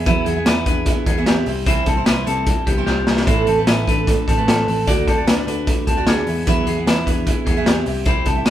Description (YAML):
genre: jangly indie pop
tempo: 150 BPM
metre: 4/4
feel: straight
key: unclear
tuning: A4 = 442 Hz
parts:
  - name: picked steel-string acoustic guitar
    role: accompaniment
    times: 0.0-8.5 s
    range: A2 to E5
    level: -23 LUFS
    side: right 6 dB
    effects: none
  - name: clean electric guitar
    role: arpeggios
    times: 0.0-8.5 s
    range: B3 to D5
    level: -22 LUFS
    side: left 3 dB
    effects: none
  - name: vintage muted picked electric bass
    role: bass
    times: 0.0-8.5 s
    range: A1 to E2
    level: -25 LUFS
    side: equal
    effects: none
  - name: raw garage drum kit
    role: drums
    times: 0.1-8.5 s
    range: hi-hat, kick drum, snare drum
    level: -18 LUFS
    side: equal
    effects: none
room: light reverb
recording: band playing live in one room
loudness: -15 LUFS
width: side -12 dB against mid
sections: 0.0-8.5 A section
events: drum fill 2.9-3.3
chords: 0.0 Eadd9; 1.5 C; 3.3 Amadd9; 4.9 D; 6.3 Eadd9; 7.9 C